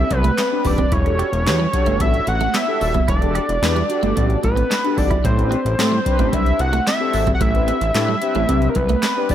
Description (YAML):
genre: early-eighties boogie funk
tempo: 111 BPM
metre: 4/4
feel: straight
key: A dorian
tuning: A4 = 440 Hz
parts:
  - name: fat analog lead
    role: melody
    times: 0.0-9.3 s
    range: Bb4 to F#5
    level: -21 LUFS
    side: equal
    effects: analog delay
  - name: mellow synth brass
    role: accompaniment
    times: 0.0-9.3 s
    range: C4 to B4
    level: -25 LUFS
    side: left 3 dB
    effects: chorus
  - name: fat analog bass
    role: bass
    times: 0.0-9.3 s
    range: D#1 to A2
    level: -21 LUFS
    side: equal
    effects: none
  - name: clean electric guitar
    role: riff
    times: 0.1-9.3 s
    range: G3 to G4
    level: -27 LUFS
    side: right 7 dB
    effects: analog chorus
  - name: booming analog drum machine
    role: drums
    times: 0.1-9.3 s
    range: handclaps, hi-hat, kick drum, snare drum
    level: -21 LUFS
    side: equal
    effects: none
room: light reverb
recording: none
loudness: -16 LUFS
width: side -10 dB against mid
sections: 0.0-9.3 A section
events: none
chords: 0.0 Am11; 0.9 Em11; 5.2 Am11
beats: 0.38 | 0.92 1.46 2.00 2.54 | 3.08 3.62 4.16 4.70 | 5.24 5.78 6.32 6.86 | 7.40 7.95 8.49 9.03